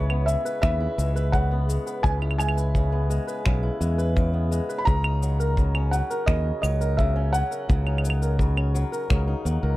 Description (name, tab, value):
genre	folktronica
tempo	85 BPM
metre	4/4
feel	straight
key	C# dorian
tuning	A4 = 443 Hz
part	felt-muted upright piano	melody	0.0-9.8 s	C#5 to B5	-29 LUFS	right 1 dB	vintage 12-bit sampler grit, plate reverb, tape echo
part	fingerpicked swing-style acoustic guitar	arpeggios	0.0-9.8 s	C#3 to B4	-30 LUFS	left 1 dB	plate reverb, tape echo
part	modern bright fingered electric bass	bass	0.0-9.8 s	B1 to E2	-23 LUFS	equal	none
part	electronic claves, cabasa and finger snaps	drums	0.1-9.6 s	none	-32 LUFS	right 1 dB	none
part	kick drum	drums	0.6-9.2 s	none	-23 LUFS	equal	none
room	little or no reverb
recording	none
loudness	-21 LUFS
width	side -17 dB against mid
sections	0.0-9.8 A section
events	none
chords	0.0 C#m7; 4.9 D#m/C#